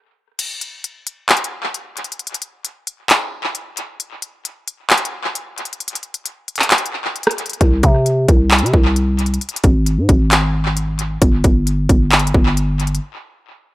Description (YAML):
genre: hip hop, trap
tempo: 133 BPM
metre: 4/4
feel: half-time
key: unclear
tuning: A4 = 440 Hz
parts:
  - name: trap drum kit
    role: drums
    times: 0.4-13.0 s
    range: crash cymbal, handclaps, hi-hat, kick drum, rim click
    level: -16 LUFS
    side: equal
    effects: tape echo
  - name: growling 808-style bass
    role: bass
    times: 7.6-13.0 s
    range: G1 to C3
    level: -16 LUFS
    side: equal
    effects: none
room: little or no reverb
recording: echo-heavy mix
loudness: -14 LUFS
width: side -17 dB against mid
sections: 0.4-13.7 A section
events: break 0.0-0.4, 13.0-13.7; kick muted 0.4-7.6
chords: none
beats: | 0.39 0.84 1.29 1.74 | 2.19 2.65 3.10 3.55 | 4.00 4.45 4.90 5.35 | 5.80 6.25 6.71 7.16 | 7.61 8.06 8.51 8.96 | 9.41 9.86 10.31 10.77 | 11.22 11.67 12.12 12.57